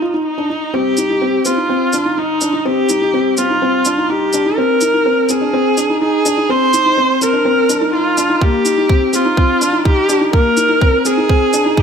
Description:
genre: piano and strings electronica.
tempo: 125 BPM.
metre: 4/4.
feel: straight.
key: C minor.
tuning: A4 = 440 Hz.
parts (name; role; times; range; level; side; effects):
warm viola; melody; 0.0-11.8 s; Eb4 to C5; -15 LUFS; equal; none.
felt-muted upright piano; riff; 0.0-11.8 s; Bb3 to F4; -16 LUFS; left 1 dB; none.
round analog bass; bass; 0.7-11.8 s; Eb1 to C2; -39 LUFS; right 1 dB; sidechain pumping, high-pass filter.
shaker; drums; 1.0-11.6 s; none; -22 LUFS; equal; high-pass filter on perc, high-pass filter on room.
electronic kick drum; drums; 8.4-11.8 s; none; -13 LUFS; right 1 dB; none.
room: moderate scoring stage reverb, RT60 2.0 s.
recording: none.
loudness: -12 LUFS.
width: side -6 dB against mid.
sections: 0.7-11.8 A section.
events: build-up 0.7-11.8.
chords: 0.0 Cmadd9 (rootless); 0.7 Cm; 4.6 Fm; 8.4 Eb.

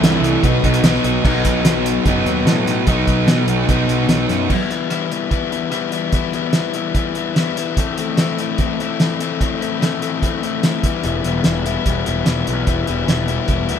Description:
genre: indie rock.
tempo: 147 BPM.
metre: 4/4.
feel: straight.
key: E minor.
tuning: A4 = 440 Hz.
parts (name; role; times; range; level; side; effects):
overdriven electric guitar; riff; 0.0-13.8 s; A2 to E4; -20 LUFS; left 7 dB; spring reverb.
thick fuzz guitar; riff; 0.0-4.5 s; B2 to E4; -19 LUFS; right 9 dB; distortion.
fuzz picked electric bass; bass; 0.0-4.5, 11.0-13.8 s; E1 to B2; -21 LUFS; equal; overdrive.
cloth-damped thuddy drum kit; drums; 0.0-13.8 s; crash cymbal, hi-hat, kick drum, rim click, snare drum; -18 LUFS; right 1 dB; none.
room: light reverb.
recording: band playing live in one room.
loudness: -15 LUFS.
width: side -8 dB against mid.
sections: 0.0-1.2 A section; 1.2-4.5 B section; 4.5-13.8 C section.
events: none.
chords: 0.4 B; 4.5 Em; 7.8 Am; 10.8 Em.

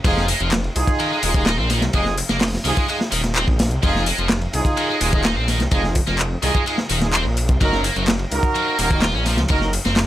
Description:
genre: breakbeat, breaks.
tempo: 127 BPM.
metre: 4/4.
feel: straight.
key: F phrygian.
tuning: A4 = 439 Hz.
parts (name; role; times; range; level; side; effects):
scooped high-gain guitar; riff; 0.0-9.9 s; Eb3 to F4; -24 LUFS; equal; distortion, tube saturation, vintage 12-bit sampler grit, dub echo.
clear brass ensemble; stabs; 0.0-9.7 s; Eb4 to Bb4; -25 LUFS; right 2 dB; dub echo.
detuned saw bass; bass; 0.0-10.1 s; Eb1 to Db2; -22 LUFS; equal; none.
crunchy breakbeat drum kit; drums; 0.0-10.1 s; hi-hat, kick drum, ride cymbal, snare drum; -21 LUFS; equal; none.
house drum kit; drums; 0.0-10.1 s; handclaps, hi-hat; -25 LUFS; left 2 dB; overdrive.
room: light reverb.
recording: none.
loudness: -17 LUFS.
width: side -13 dB against mid.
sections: 0.0-10.1 A section.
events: none.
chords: 0.0 Fm7; 7.6 Gb6.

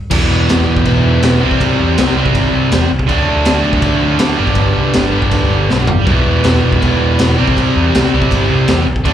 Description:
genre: punk rock.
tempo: 161 BPM.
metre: 4/4.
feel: straight.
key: unclear.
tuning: A4 = 440 Hz.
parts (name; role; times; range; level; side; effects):
distorted electric guitar; riff; 0.1-9.1 s; G2 to E4; -18 LUFS; left 9 dB; distortion.
distorted electric guitar; riff; 0.1-9.1 s; E2 to D4; -16 LUFS; right 10 dB; overdrive.
overdriven picked electric bass; bass; 0.1-9.1 s; E1 to E2; -16 LUFS; equal; none.
raw garage drum kit; drums; 0.1-9.1 s; crash cymbal, kick drum, snare drum, toms; -16 LUFS; left 1 dB; none.
room: small room ambience.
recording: live gig heard through the venue's PA, club reverb.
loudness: -10 LUFS.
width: side -10 dB against mid.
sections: 0.1-9.1 A section.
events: drum fill 5.7-6.1.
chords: 0.1 Em; 1.4 C; 3.1 D; 4.4 G; 6.1 Em; 7.4 C.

